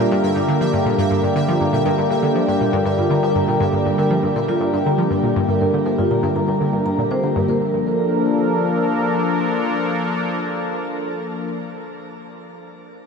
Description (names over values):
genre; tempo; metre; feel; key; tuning
ambient, sequencer-driven space music; 120 BPM; 4/4; straight; Bb lydian; A4 = 438 Hz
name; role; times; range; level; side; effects
sweeping resonant pad; sustained chords; 0.0-11.5 s; D3 to Bb4; -19 LUFS; equal; chorus, shimmer reverb
vibraphone with soft mallets; arpeggios; 0.0-7.7 s; F4 to Bb5; -24 LUFS; right 1 dB; auto-pan, ping-pong delay, shimmer reverb
analog pluck; riff; 0.0-7.7 s; G2 to F3; -23 LUFS; left 1 dB; chorus, ping-pong delay, shimmer reverb
pulsing gated texture; texture; 0.0-7.5 s; E5; -33 LUFS; right 1 dB; chorus, built-in reverb, shimmer reverb
room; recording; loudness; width
wet huge ambient reverb, RT60 8.3 s; dreamy mix soaked in reverb; -17 LUFS; side -5 dB against mid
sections
0.0-7.5 A section; 7.5-11.5 B section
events
none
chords
0.0 Gm; 7.5 Bbmaj7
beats
0.48 0.98 | 1.48 1.98 2.48 2.98 | 3.48 3.98 4.48 4.98 | 5.48 5.98 6.48 6.98 | 7.48 7.98 8.48 8.98 | 9.48 9.98 10.48 10.98